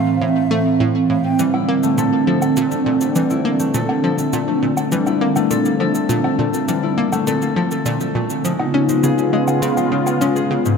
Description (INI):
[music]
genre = ambient, sequencer-driven space music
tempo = 102 BPM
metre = 4/4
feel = straight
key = unclear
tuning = A4 = 443 Hz
[part]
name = breathy concert flute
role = melody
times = 0.0-1.4 s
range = E5 to G5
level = -29 LUFS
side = equal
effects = tape echo
[part]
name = sweeping resonant pad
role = sustained chords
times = 0.0-10.8 s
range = A2 to E#4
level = -18 LUFS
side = right 2 dB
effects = chorus
[part]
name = analog pluck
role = riff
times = 0.0-10.7 s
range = A2 to C#4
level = -22 LUFS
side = equal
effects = chorus, tape echo
[part]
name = concert harp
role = arpeggios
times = 1.4-10.8 s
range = G#2 to A4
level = -22 LUFS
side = moving between left 9 dB and left 2 dB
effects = auto-pan, tape echo
[part]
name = shaker and woodblock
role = percussion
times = 1.4-10.8 s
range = none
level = -29 LUFS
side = right 1 dB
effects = tape echo
[sound]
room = wet cathedral reverb, RT60 6.2 s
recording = in a vast, echoing space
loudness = -15 LUFS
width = side -6 dB against mid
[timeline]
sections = 0.0-10.8 A section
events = none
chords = 0.0 Am; 1.4 Bbadd9; 8.4 C#7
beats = 0.21 0.80 | 1.39 1.98 2.57 3.15 | 3.74 4.33 4.92 5.51 | 6.09 6.68 7.27 7.86 | 8.45 9.04 9.62 10.21